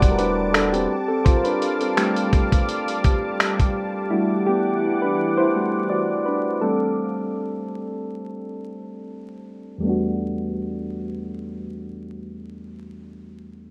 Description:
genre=contemporary R&B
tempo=84 BPM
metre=4/4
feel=swing 54% on 16ths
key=E minor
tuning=A4 = 440 Hz
part: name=soft electric-piano-like synth keys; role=accompaniment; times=0.0-13.7 s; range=E2 to D5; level=-26 LUFS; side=equal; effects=chorus, low-pass filter
part: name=lush unison pad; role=sustained chords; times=0.0-7.0 s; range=E3 to D6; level=-29 LUFS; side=equal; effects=chorus, low-pass filter
part: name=long sustained 808-style bass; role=bass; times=0.0-0.9 s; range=E1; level=-33 LUFS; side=equal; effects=none
part: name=dusty soul sampler-style drum kit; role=drums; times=0.0-3.7 s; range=finger snaps, hi-hat, kick drum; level=-22 LUFS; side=equal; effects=none
room=moderate studio reverb, RT60 0.6 s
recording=rough home demo mix, vinyl crackle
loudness=-22 LUFS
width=mono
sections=0.0-9.8 A section; 9.8-12.7 B section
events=synth keys solo 0.0-9.8; filter sweep 0.0-9.8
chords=0.0 Em11; 0.9 F69; 4.1 Em11; 6.6 F69/E; 9.8 Em11

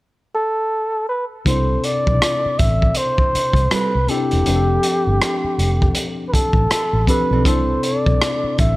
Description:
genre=R&B, neo-soul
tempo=80 BPM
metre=4/4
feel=swing 60% on 16ths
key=C major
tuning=A4 = 439 Hz
part: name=breathy flugelhorn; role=melody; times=0.3-8.8 s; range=G4 to E5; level=-20 LUFS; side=equal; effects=none
part: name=tine electric piano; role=accompaniment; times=1.4-8.8 s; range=C3 to A4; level=-23 LUFS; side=left 2 dB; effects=analog chorus
part: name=vintage muted fingered electric bass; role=bass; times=1.5-8.8 s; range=E1 to C2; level=-19 LUFS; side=equal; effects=none
part: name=crunchy breakbeat drum kit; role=drums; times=1.5-8.8 s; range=hi-hat, kick drum, rim click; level=-20 LUFS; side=equal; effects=none
part: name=nylon-string guitar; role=second line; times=3.7-7.4 s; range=F3 to A4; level=-25 LUFS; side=right 3 dB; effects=none
room=small room ambience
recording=none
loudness=-16 LUFS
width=side -19 dB against mid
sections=0.0-1.5 A section; 1.5-8.8 B section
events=none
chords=0.0 N.C.; 1.5 C6; 4.5 F6; 7.5 C6

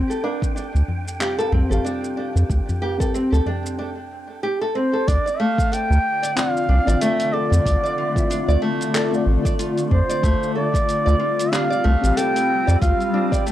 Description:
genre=organic downtempo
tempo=93 BPM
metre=4/4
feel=swing 57% on 16ths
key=D minor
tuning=A4 = 440 Hz
part: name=nylon-string guitar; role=arpeggios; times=0.0-13.5 s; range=A3 to D5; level=-25 LUFS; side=equal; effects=tape echo
part: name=round analog bass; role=bass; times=0.0-12.9 s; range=A1 to F2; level=-17 LUFS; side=equal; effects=tube saturation, sidechain pumping
part: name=wind-like tuned noise texture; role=texture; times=0.0-3.8 s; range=G5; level=-39 LUFS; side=right 3 dB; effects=built-in reverb
part: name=deep house drum kit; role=drums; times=0.1-13.5 s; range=handclaps, hi-hat, shaker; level=-29 LUFS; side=equal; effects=overdrive
part: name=tabla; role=percussion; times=0.2-3.6 s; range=none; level=-28 LUFS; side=left 1 dB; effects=none
part: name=electronic kick drum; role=drums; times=0.4-13.4 s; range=none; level=-23 LUFS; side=equal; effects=none
part: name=muted felt-like synth keys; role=accompaniment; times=1.2-13.5 s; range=C4 to G5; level=-27 LUFS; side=left 2 dB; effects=chorus, sidechain pumping, tape echo
part: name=bright reedy bansuri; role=melody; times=4.8-13.4 s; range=C5 to G5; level=-23 LUFS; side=right 1 dB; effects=analog delay
part: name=granular cloud pad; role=sustained chords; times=6.2-13.5 s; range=D3 to D5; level=-26 LUFS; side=left 2 dB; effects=built-in reverb, sidechain pumping
room=little or no reverb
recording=dry, gritty hardware recording, cassette tape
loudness=-18 LUFS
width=side -12 dB against mid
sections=0.0-5.1 A section; 5.1-13.5 B section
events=filter sweep on synth keys 0.0-5.1; break 3.8-5.1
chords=0.0 Fsus2; 5.1 Dm7; 10.2 Fsus2

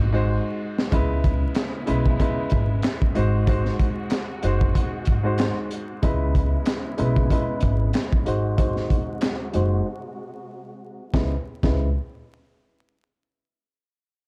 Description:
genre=hip hop, boom-bap hip-hop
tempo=94 BPM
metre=4/4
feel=swing 55% on 16ths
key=unclear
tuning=A4 = 440 Hz
part: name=bright upright piano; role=accompaniment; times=0.0-11.9 s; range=G#2 to B#4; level=-29 LUFS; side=equal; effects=high-pass filter, low-pass filter
part: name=warm studio string section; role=sustained chords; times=0.0-11.4 s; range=B#2 to F#4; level=-38 LUFS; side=equal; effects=high-pass filter, low-pass filter
part: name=upright bass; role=bass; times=0.0-11.9 s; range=F#1 to C#2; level=-26 LUFS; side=equal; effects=none
part: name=crunchy breakbeat drum kit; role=drums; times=0.8-11.8 s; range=handclaps, hi-hat, kick drum, snare drum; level=-26 LUFS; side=equal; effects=none
room=small room reverb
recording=dark, warm production, vinyl crackle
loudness=-23 LUFS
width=mono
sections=0.9-11.1 A section; 11.1-13.7 B section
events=drum fill 0.3-0.9; filter sweep 0.9-11.1; break 9.9-11.1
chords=0.0 G#7; 0.9 C#m7; 3.2 G#7; 6.0 C#m7; 8.3 G#7; 11.1 C#m7

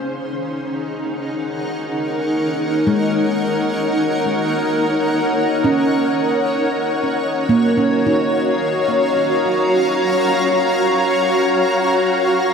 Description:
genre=ambient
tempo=free time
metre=none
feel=none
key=unclear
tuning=A4 = 441 Hz
part: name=granular cloud pad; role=sustained chords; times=0.0-12.5 s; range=Db4 to Bb5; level=-16 LUFS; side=equal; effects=built-in reverb
part: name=handpan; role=arpeggios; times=2.9-9.8 s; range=Ab3 to Eb4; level=-21 LUFS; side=right 1 dB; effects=ping-pong delay
room=wet shimmer reverb, RT60 6.8 s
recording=none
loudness=-16 LUFS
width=side -6 dB against mid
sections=0.0-12.5 A section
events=none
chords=0.0 Ebm7; 6.6 Gbmaj7

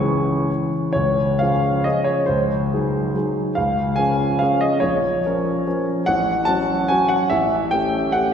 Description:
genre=classical, romantic triple-time dance for piano with dotted rhythms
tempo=117-153 BPM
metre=3/4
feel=rubato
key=Db major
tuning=A4 = 440 Hz
part: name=warm grand piano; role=solo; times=0.0-8.3 s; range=A1 to C#6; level=-17 LUFS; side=equal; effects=none
room=wet concert hall reverb, RT60 2.6 s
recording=recorded in a church or concert hall, lossy compression artefacts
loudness=-17 LUFS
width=side -8 dB against mid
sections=0.9-8.3 A section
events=none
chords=0.0 C#m; 0.9 Db; 2.3 Ab7/Db; 3.6 Db; 4.8 Bbm; 6.1 F#m/A; 7.3 A7

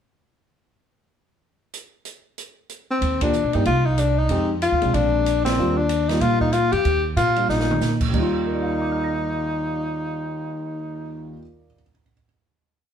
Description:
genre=jazz, small-group swing and bop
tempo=188 BPM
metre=4/4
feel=swing 62% on 8ths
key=Eb major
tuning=A4 = 440 Hz
part: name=open jazz drum kit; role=drums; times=1.7-8.2 s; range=crash cymbal, hi-hat, kick drum, ride cymbal, snare drum, toms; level=-29 LUFS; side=right 1 dB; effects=none
part: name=breathy tenor saxophone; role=melody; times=2.9-11.3 s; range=C4 to G4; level=-22 LUFS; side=left 3 dB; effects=plate reverb
part: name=upright bass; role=bass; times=3.0-11.3 s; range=Bb1 to Bb2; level=-24 LUFS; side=right 2 dB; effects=none
part: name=dark concert grand piano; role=accompaniment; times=3.2-12.2 s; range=Eb2 to Bb6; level=-27 LUFS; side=right 1 dB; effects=none
room=moderate studio reverb, RT60 0.7 s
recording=heard from further back in the room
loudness=-19 LUFS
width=side -8 dB against mid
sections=1.7-3.0 pickup bar; 3.0-8.1 A section; 8.1-10.7 final chord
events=band accent 3.2, 5.4; drum fill 7.5-7.8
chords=1.7 N.C.; 3.0 Ebmaj7; 3.7 Cmadd9; 4.3 Fm7; 4.9 Bb7; 5.6 Ebmaj7

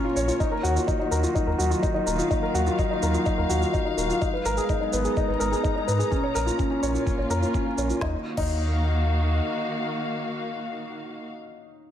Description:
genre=piano and strings electronica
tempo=126 BPM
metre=4/4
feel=straight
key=Eb minor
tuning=A4 = 440 Hz
part: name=muted studio string section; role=sustained chords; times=0.0-11.3 s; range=Bb2 to Bb5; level=-30 LUFS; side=equal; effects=sidechain pumping
part: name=dark grand piano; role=riff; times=0.0-11.9 s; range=Db4 to Db5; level=-26 LUFS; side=left 1 dB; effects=tape echo
part: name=warm sub bass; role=bass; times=0.2-9.4 s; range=Eb1 to Ab2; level=-26 LUFS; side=equal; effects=sidechain pumping
part: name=organic electronic drum kit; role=drums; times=0.2-8.5 s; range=crash cymbal, shaker, snare drum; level=-36 LUFS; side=right 4 dB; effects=none
part: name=electronic kick drum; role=drums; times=0.4-8.5 s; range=none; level=-28 LUFS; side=equal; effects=none
room=light reverb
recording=none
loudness=-22 LUFS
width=side -10 dB against mid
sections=0.0-8.0 A section; 8.0-11.8 B section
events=none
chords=0.4 Ebmadd9; 4.2 Abmadd9; 6.1 Bbm; 8.0 Ebmadd9

